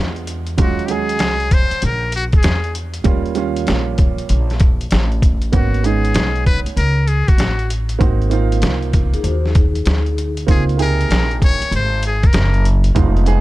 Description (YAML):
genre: hip hop, jazz-hop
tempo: 97 BPM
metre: 4/4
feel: swing 65% on 16ths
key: Eb dorian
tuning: A4 = 444 Hz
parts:
  - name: dark grand piano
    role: accompaniment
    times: 0.0-13.4 s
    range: C3 to Ab4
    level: -22 LUFS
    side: right 8 dB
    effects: none
  - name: upright bass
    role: bass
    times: 0.0-13.4 s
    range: F1 to Fb2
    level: -18 LUFS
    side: equal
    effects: none
  - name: trip hop sampler-style drum kit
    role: drums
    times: 0.2-13.4 s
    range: hi-hat, kick drum, snare drum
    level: -16 LUFS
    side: equal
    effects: none
  - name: trumpet with metal mute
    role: melody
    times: 0.6-12.7 s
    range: Gb4 to Db5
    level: -22 LUFS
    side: left 3 dB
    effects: none
  - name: vibraphone with soft mallets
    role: second line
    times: 9.1-10.3 s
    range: Eb4 to C5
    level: -25 LUFS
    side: left 6 dB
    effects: slapback echo
room: small room ambience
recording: dark, warm production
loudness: -14 LUFS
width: side -17 dB against mid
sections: 0.0-13.4 A section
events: none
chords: 0.0 Bb7b9 (rootless); 0.6 Ebm11; 3.1 Eb7; 5.5 Abm11; 8.0 Ab; 10.5 Dbmaj7sus2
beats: | 0.59 1.21 1.82 2.44 | 3.06 3.68 4.30 4.92 | 5.54 6.15 6.77 7.39 | 8.01 8.63 9.25 9.87 | 10.48 11.10 11.72 12.34 | 12.96